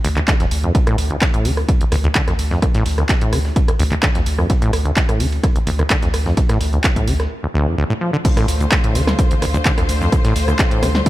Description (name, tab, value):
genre	acid house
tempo	128 BPM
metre	4/4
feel	straight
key	D minor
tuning	A4 = 440 Hz
part	acid bass, saw	riff	0.0-10.9 s	D2 to F3	-21 LUFS	equal	tube saturation, sidechain pumping
part	saturated sub bass	bass	0.0-11.0 s	D1 to D2	-20 LUFS	equal	sidechain pumping
part	dusty soul sampler-style drum kit	drums	0.0-11.1 s	hi-hat, ride cymbal, snare drum	-34 LUFS	right 1 dB	none
part	punchy analog drum machine	drums	0.0-11.1 s	crash cymbal, handclaps, hi-hat, rim click, shaker, snare drum	-22 LUFS	right 1 dB	none
part	electronic kick drum	drums	0.3-11.1 s	none	-17 LUFS	equal	none
part	clear symphonic string section	sustained chords	8.2-11.1 s	D3 to C5	-24 LUFS	left 2 dB	sidechain pumping
room	light reverb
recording	dark, warm production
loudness	-14 LUFS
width	side -16 dB against mid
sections	0.0-8.2 A section; 8.2-11.1 B section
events	break 7.3-8.2; drop 8.2-11.1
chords	0.0 N.C.; 8.2 Dm7